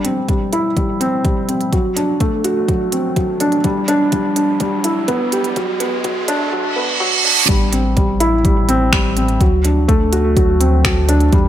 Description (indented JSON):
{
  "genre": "piano and strings electronica",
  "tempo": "125 BPM",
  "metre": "4/4",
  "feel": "straight",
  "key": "A dorian",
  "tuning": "A4 = 439 Hz",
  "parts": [
    { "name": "felt-muted upright piano", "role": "riff", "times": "0.0-11.5 s", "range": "F#3 to G4", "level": "-16 LUFS", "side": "equal", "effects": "digital delay" },
    { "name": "organic electronic drum kit", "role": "drums", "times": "0.0-11.4 s", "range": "finger snaps, hi-hat", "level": "-21 LUFS", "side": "right 1 dB", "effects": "overdrive, high-pass filter on hats, high-pass filter on snare" },
    { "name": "riser and reverse cymbal", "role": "sound effects", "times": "2.2-7.5 s", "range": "none", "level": "-20 LUFS", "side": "right 4 dB", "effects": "none" },
    { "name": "electronic kick drum", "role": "drums", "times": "0.3-11.4 s", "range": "none", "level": "-17 LUFS", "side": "equal", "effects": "none" },
    { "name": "dark detuned saw bass", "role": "bass", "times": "7.5-11.5 s", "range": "A1 to E2", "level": "-17 LUFS", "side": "equal", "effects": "sidechain pumping" }
  ],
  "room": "moderate concert hall reverb, RT60 1.8 s",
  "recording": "high-pass filter",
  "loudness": "-13 LUFS",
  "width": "side -11 dB against mid",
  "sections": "0.0-7.5 A section; 7.5-11.5 B section",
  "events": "build-up 0.0-7.5; filter sweep 0.0-7.5; riser 2.2-6.5; reverse cymbal 6.5-7.5; drop 7.5-11.5",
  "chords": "0.0 Gsus4; 1.7 D7; 3.6 Em7; 5.6 F#sus4; 7.5 Am7; 9.4 D7"
}